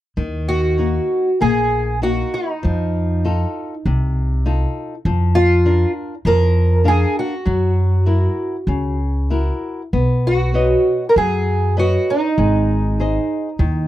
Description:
fado-style ballad; 98 BPM; 4/4; rubato; Eb minor; A4 = 441 Hz
flamenco guitar; accompaniment; 0.2-13.9 s; C3 to F5; -23 LUFS; left 3 dB
upright bass; bass; 0.2-13.9 s; Ab1 to Gb2; -17 LUFS; equal
fingerpicked twelve-string acoustic guitar; melody; 0.5-13.9 s; Eb4 to Bb4; -19 LUFS; right 1 dB
little or no reverb; dry, close 1970s-style studio recording; -15 LUFS; side -14 dB against mid
0.2-13.9 A section
0.2 Ebm; 2.6 F7; 5.1 Bb/F; 7.5 Gb7; 9.9 Badd9; 12.4 Ab

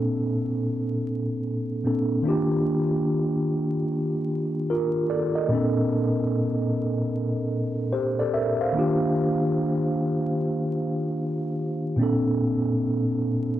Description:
hip hop; 74 BPM; 4/4; swing 64% on 16ths; Eb lydian; A4 = 440 Hz
mellow tine electric piano; solo; 0.0-13.6 s; Bb2 to F5; -22 LUFS; equal; medium stereo tremolo, cassette tape, low-pass filter, analog delay
wet small room reverb, RT60 0.5 s; vinyl crackle; -22 LUFS; side -12 dB against mid
0.0-13.6 A section
0.0 Bbmaj9; 2.2 Ebmaj9; 5.5 Bbmaj9; 8.7 Ebmaj9; 12.0 Bbmaj9

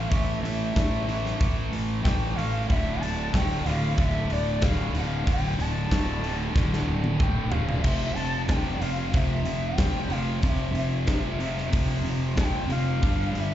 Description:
quiet-loud alternative rock; 93 BPM; 4/4; straight; D minor; A4 = 440 Hz
bright reedy bansuri; melody; 0.0-13.5 s; D5 to A5; -33 LUFS; left 3 dB; slapback echo, tape echo
distorted electric guitar; riff; 0.0-13.5 s; D2 to A3; -34 LUFS; left 7 dB; distortion
distorted electric guitar; riff; 0.0-13.5 s; D2 to A3; -34 LUFS; right 1 dB; overdrive
tight distorted guitar; riff; 0.0-13.5 s; D2 to A3; -35 LUFS; right 11 dB; distortion, slapback echo
fuzz fingered electric bass; bass; 0.0-13.5 s; D1 to A1; -28 LUFS; equal; overdrive
big rock drum kit; drums; 0.1-13.5 s; crash cymbal, hi-hat, kick drum, snare drum, splash cymbal, toms; -27 LUFS; equal
little or no reverb; live gig heard through the venue's PA, club reverb, nothing above 7.7 kHz; -23 LUFS; side -12 dB against mid
0.0-13.5 A section
drum fill 6.6-7.8
0.0 A5; 2.7 D5; 7.8 F5; 13.0 G5

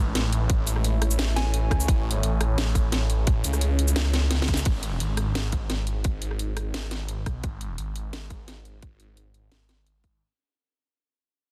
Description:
half-time drum and bass; 173 BPM; 4/4; half-time; A4 = 440 Hz
deep dark ambient pad; sustained chords; 0.0-4.6 s; A3 to C#5; -39 LUFS; equal; chorus, built-in reverb, sidechain pumping
phased detuned saw bass; bass; 0.0-10.2 s; G#1 to C#2; -28 LUFS; equal; phaser
drum and bass drum kit; drums; 0.2-10.1 s; hi-hat, rim click, shaker, snare drum; -33 LUFS; equal; overdrive
electronic kick drum; drums; 0.5-10.1 s; -27 LUFS; equal; overdrive
soft synth bell; melody; 1.4-1.9 s; G#5; -40 LUFS; equal; chorus, phaser, delay
little or no reverb; dense, heavily limited modern master; -25 LUFS; mono
0.0-4.7 A section; 4.7-10.2 B section
drop 0.0-4.7; drum fill 4.3-4.7; band accent 4.5; fade-out 4.7-10.2
0.0 A; 4.7 N.C.

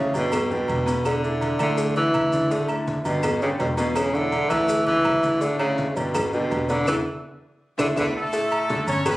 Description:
latin, salsa; 165 BPM; 4/4; straight; A4 = 438 Hz
breathy tenor saxophone; melody; 0.0-8.1 s; B2 to E3; -22 LUFS; right 1 dB; plate reverb
bright grand piano; accompaniment; 0.0-9.2 s; A2 to G5; -28 LUFS; left 1 dB
upright bass; bass; 0.0-9.2 s; E1 to E2; -30 LUFS; equal
agogo bells and timbales; percussion; 0.1-9.2 s; -31 LUFS; right 2 dB
congas; percussion; 0.1-9.2 s; -35 LUFS; equal
maracas; percussion; 0.1-9.2 s; -42 LUFS; left 2 dB
claves; percussion; 0.3-9.2 s; -39 LUFS; left 2 dB
cowbell; percussion; 0.3-9.2 s; -32 LUFS; left 2 dB
bright horn section; melody; 8.0-9.2 s; A3 to C#5; -24 LUFS; equal; plate reverb
moderate large studio reverb, RT60 0.9 s; recorded on a phone in the room, studio reverb, compression; -20 LUFS; side -17 dB against mid
0.0-8.3 A section
drum fill 6.9-8.3; band accent 6.9-8.3
0.3 G; 1.0 E5; 1.8 Dsus2; 3.2 G; 4.0 E5; 4.7 Dsus2; 6.1 G; 6.9 E5; 7.6 Dsus2; 8.3 D5

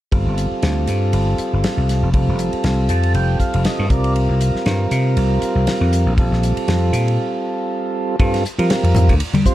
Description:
electric jazz fusion; 119 BPM; 4/4; swing 56% on 16ths; G minor; A4 = 439 Hz
mellow tonewheel organ; accompaniment; 0.1-9.5 s; G3 to A5; -21 LUFS; right 2 dB; slow rotary speaker
vintage slap bass; bass; 0.1-9.4 s; F1 to G3; -17 LUFS; equal
damped 70s drum kit; drums; 0.1-9.5 s; hi-hat, kick drum, ride cymbal, snare drum; -22 LUFS; equal
congas; percussion; 8.9-9.4 s; -18 LUFS; left 2 dB
light reverb; dark, warm production; -15 LUFS; side -14 dB against mid
0.1-8.2 A section; 8.2-9.5 B section
tonewheel organ fill 2.6-4.2; break 7.2-8.2
0.1 G5; 2.1 Fadd9; 3.9 C5; 6.2 Bbsus2; 8.2 Gm9

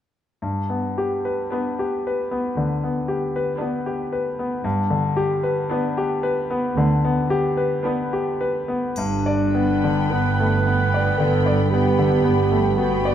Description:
classical, romantic movement for piano and orchestra; 51-59 BPM; 4/4; rubato; G major; A4 = 442 Hz
bright grand piano; melody; 0.4-13.1 s; G2 to D5; -21 LUFS; left 2 dB
muted studio cello section; bass; 0.4-13.1 s; D2 to G2; -26 LUFS; right 4 dB
muted studio viola section; accompaniment; 1.5-13.1 s; B3 to B4; -28 LUFS; right 3 dB
dark clarinet; second line; 9.0-13.1 s; D4 to B4; -23 LUFS; equal
muted studio double bass section; bass; 9.0-13.1 s; G1; -26 LUFS; right 5 dB
triangle; percussion; 9.0-11.1 s; -41 LUFS; left 3 dB
muted studio violin section; melody; 9.5-13.1 s; B5; -32 LUFS; left 2 dB
muted studio violin section; second line; 9.5-13.1 s; G5; -31 LUFS; left 1 dB
light reverb; dark, warm production; -19 LUFS; side -10 dB against mid
0.4-9.0 A section; 9.0-13.1 B section
0.4 G

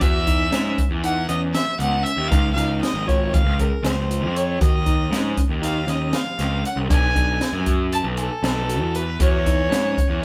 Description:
progressive instrumental, band music in an uneven meter; 235 BPM (eighths); 9/8; straight; A4 = 440 Hz
rich violin; melody; 0.0-10.2 s; A4 to A5; -27 LUFS; equal
tine electric piano; arpeggios; 0.0-10.0 s; B3 to Ab5; -32 LUFS; equal
fuzz picked electric bass; bass; 0.0-10.2 s; Ab1 to G#2; -26 LUFS; equal; overdrive
open jazz drum kit; drums; 0.0-10.1 s; hi-hat, kick drum, snare drum; -24 LUFS; equal
moderate studio reverb, RT60 0.6 s; band playing live in one room; -21 LUFS; mono
0.0-10.2 A section
0.0 Esus2; 2.3 Dbadd9; 4.6 Eb7(no3); 6.9 Bm7; 9.2 Eadd9

